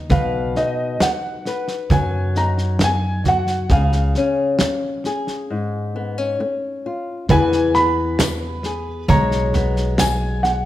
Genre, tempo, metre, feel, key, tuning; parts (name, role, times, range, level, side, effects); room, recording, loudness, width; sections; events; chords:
acoustic folk duo or small band; 67 BPM; 4/4; straight; A4 = 440 Hz
nylon-string guitar; accompaniment; 0.0-10.7 s; G#2 to B4; -23 LUFS; left 3 dB
upright bass; bass; 0.0-10.7 s; B1 to F#2; -22 LUFS; equal
warm upright piano; melody; 0.1-10.7 s; D#5 to B5; -22 LUFS; right 1 dB; slapback echo
loose indie drum kit; drums; 0.1-10.6 s; kick drum, snare drum; -24 LUFS; equal
cajon; percussion; 0.1-10.6 s; -21 LUFS; right 2 dB
metal-body resonator slide guitar; second line; 7.3-10.7 s; B4 to C#5; -26 LUFS; equal
tambourine; percussion; 8.2-10.2 s; -33 LUFS; left 8 dB
moderate recital hall reverb, RT60 1.3 s; -17 LUFS; side -14 dB against mid
0.0-7.3 A section; 7.3-10.7 B section
break 5.5-7.3
0.1 B; 3.7 C#; 7.3 E